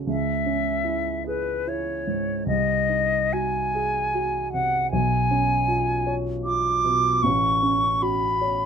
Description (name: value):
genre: classical, romantic duo for flute and grand piano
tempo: 75 BPM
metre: 3/4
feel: uneven beats, rubato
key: C# minor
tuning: A4 = 442 Hz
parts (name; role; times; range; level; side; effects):
- dark grand piano; accompaniment; 0.0-8.7 s; A1 to C#5; -25 LUFS; right 2 dB; none
- silver concert flute; melody; 0.1-8.7 s; B4 to D6; -23 LUFS; left 1 dB; none
room: light reverb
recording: minimal, uncompressed stereo recording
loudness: -21 LUFS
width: side -7 dB against mid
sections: 0.0-8.7 A section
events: none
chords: 0.1 C#m; 2.5 G#7/B#; 4.9 C#7/B; 7.2 F#m/A